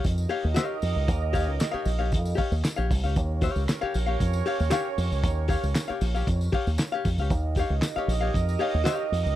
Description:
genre	funk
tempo	116 BPM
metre	4/4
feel	straight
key	unclear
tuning	A4 = 440 Hz
part	mellow horn section	second line	0.0-9.4 s	Db4 to Eb5	-33 LUFS	right 12 dB	none
part	archtop guitar, miked and amplified	accompaniment	0.0-9.1 s	G4 to F5	-30 LUFS	left 6 dB	none
part	fingered electric bass with an envelope filter	bass	0.0-9.4 s	Bb1 to F2	-26 LUFS	equal	none
part	cloth-damped thuddy drum kit	drums	0.0-9.3 s	handclaps, hi-hat, kick drum, snare drum	-29 LUFS	equal	none
part	tambourine	percussion	0.0-9.4 s	none	-44 LUFS	left 1 dB	none
room	little or no reverb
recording	dry, close 1970s-style studio recording, faint mains hum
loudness	-23 LUFS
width	side -13 dB against mid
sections	0.0-9.4 A section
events	none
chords	0.0 Eb9

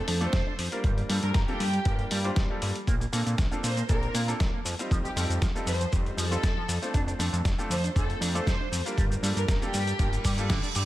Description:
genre	nu-disco, nu disco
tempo	118 BPM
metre	4/4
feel	straight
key	unclear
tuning	A4 = 440 Hz
part	warm symphonic violin section	melody	0.0-10.3 s	G4 to C5	-35 LUFS	equal	tape echo
part	bright grand piano	accompaniment	0.0-10.5 s	G3 to C5	-34 LUFS	equal	vintage 12-bit sampler grit, sidechain pumping, tape echo
part	electric guitar with an envelope filter	riff	0.1-10.8 s	F2 to D5	-38 LUFS	right 2 dB	analog chorus
part	fat analog bass	bass	0.1-10.9 s	F1 to Bb2	-29 LUFS	equal	none
part	dusty soul sampler-style drum kit	drums	0.1-10.9 s	cabasa, hi-hat, snare drum	-34 LUFS	left 1 dB	overdrive
part	electronic kick drum	drums	0.3-10.6 s	none	-28 LUFS	equal	overdrive
part	reverse cymbal	sound effects	10.2-10.9 s	none	-34 LUFS	right 5 dB	none
room	light reverb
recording	none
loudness	-25 LUFS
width	side -15 dB against mid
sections	0.0-10.9 A section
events	reverse cymbal 10.2-10.9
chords	0.0 Dm7/F; 0.8 Gm7; 2.9 Bbmaj7; 4.7 F7; 6.9 Dm7/F; 9.0 Gm7

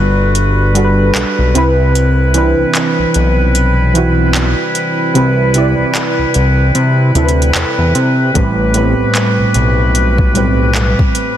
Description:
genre	contemporary R&B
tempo	75 BPM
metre	4/4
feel	swing 58% on 16ths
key	unclear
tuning	A4 = 439 Hz
part	warm analog keys	accompaniment	0.0-11.4 s	A2 to D5	-14 LUFS	right 2 dB	chorus
part	clear woodwind section	sustained chords	0.0-11.4 s	D3 to B4	-18 LUFS	left 1 dB	sidechain pumping
part	fat analog bass	bass	0.0-10.9 s	G1 to C3	-13 LUFS	equal	none
part	smooth R&B drum kit	drums	0.3-11.4 s	handclaps, hi-hat, kick drum	-18 LUFS	equal	none
room	light reverb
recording	dense, heavily limited modern master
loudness	-10 LUFS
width	side -11 dB against mid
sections	0.0-11.4 A section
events	break 0.0-8.4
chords	0.0 Gmaj7; 1.6 Cmaj7; 8.4 Am9

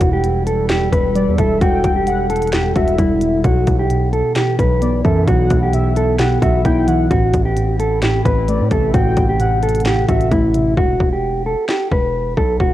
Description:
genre	hip hop, trap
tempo	131 BPM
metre	4/4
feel	half-time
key	E minor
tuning	A4 = 437 Hz
part	mellow electric guitar	melody	0.0-12.7 s	E4 to B4	-18 LUFS	equal	spring reverb, low-pass filter
part	muted felt-like synth keys	accompaniment	0.0-10.8 s	E2 to B3	-20 LUFS	right 1 dB	chorus, low-pass filter, cassette tape
part	warbly tape-like pad	sustained chords	0.0-10.7 s	E3 to A4	-28 LUFS	equal	chorus, built-in reverb, cassette tape
part	hard-hitting 808-style bass	bass	0.0-12.7 s	E1 to A2	-20 LUFS	equal	none
part	trap drum kit	drums	0.0-12.7 s	handclaps, hi-hat, kick drum, snare drum	-19 LUFS	equal	cassette tape
part	warm velvety synth lead	second line	1.2-10.7 s	D5 to G5	-25 LUFS	left 2 dB	chorus, cassette tape, analog delay
room	digital ambience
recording	home recording on cassette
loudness	-13 LUFS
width	side -14 dB against mid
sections	0.0-10.8 A section; 10.8-12.7 B section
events	break 10.8-12.7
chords	0.0 Em; 3.4 Bsus4; 7.1 Am; 10.8 E5

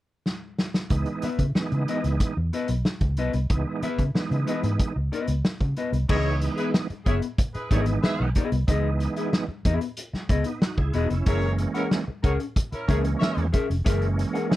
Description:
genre	funk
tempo	93 BPM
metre	4/4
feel	straight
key	C# dorian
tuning	A4 = 440 Hz
part	vintage drum kit	drums	0.3-14.6 s	crash cymbal, hi-hat, kick drum, snare drum	-25 LUFS	equal	none
part	bright tonewheel organ	stabs	0.9-14.6 s	D#3 to G#4	-29 LUFS	right 4 dB	chorus vibrato, fast rotary speaker
part	vintage muted fingered electric bass	bass	0.9-14.2 s	E1 to C#3	-25 LUFS	equal	tube saturation
part	mellow electric guitar	accompaniment	1.2-14.5 s	B3 to F#5	-29 LUFS	left 5 dB	none
part	warm horn section	second line	6.1-13.5 s	C#4 to E5	-31 LUFS	right 1 dB	none
room	little or no reverb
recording	none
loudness	-22 LUFS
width	side -15 dB against mid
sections	0.9-6.1 A section; 6.1-14.6 B section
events	drum fill 0.3-0.9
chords	0.0 N.C.; 0.9 C#m9; 11.3 F#9

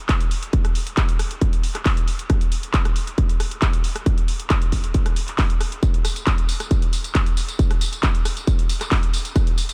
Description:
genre	techno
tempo	136 BPM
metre	4/4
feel	straight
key	none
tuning	none
part	electronic kick drum	drums	0.1-9.4 s	none	-22 LUFS	equal	distortion
part	techno drum kit	drums	0.1-9.7 s	handclaps, hi-hat, rim click, tambourine	-29 LUFS	equal	sidechain pumping on hats, sidechain pumping on cymbals, sidechain pumping on perc
room	little or no reverb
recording	none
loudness	-21 LUFS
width	mono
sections	0.0-9.7 A section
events	none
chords	none

